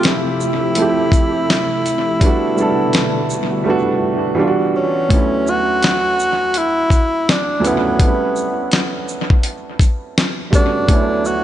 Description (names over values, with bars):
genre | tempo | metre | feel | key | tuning
lo-fi hip hop | 83 BPM | 4/4 | swing 59% on 16ths | unclear | A4 = 440 Hz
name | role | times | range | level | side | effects
breathy tenor saxophone | melody | 0.0-11.4 s | B3 to F#4 | -19 LUFS | equal | analog delay
felt-muted upright piano | accompaniment | 0.0-11.4 s | D2 to E5 | -19 LUFS | right 3 dB | cassette tape, analog delay
soft string machine | sustained chords | 0.0-5.1, 11.2-11.4 s | B2 to E5 | -24 LUFS | equal | ensemble chorus
dusty soul sampler-style drum kit | drums | 0.0-11.4 s | hi-hat, kick drum, shaker, snare drum | -16 LUFS | left 1 dB | analog delay
room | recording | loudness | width
light reverb, digital ambience | echo-heavy mix, nothing above 10.3 kHz | -14 LUFS | side -12 dB against mid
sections
0.0-5.1 A section; 5.1-11.4 B section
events
drums muted 3.7-5.1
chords
0.0 Fmaj9; 2.2 Gmaj9; 4.4 Em9; 5.1 Dmaj13; 8.0 A9; 10.9 Dmaj13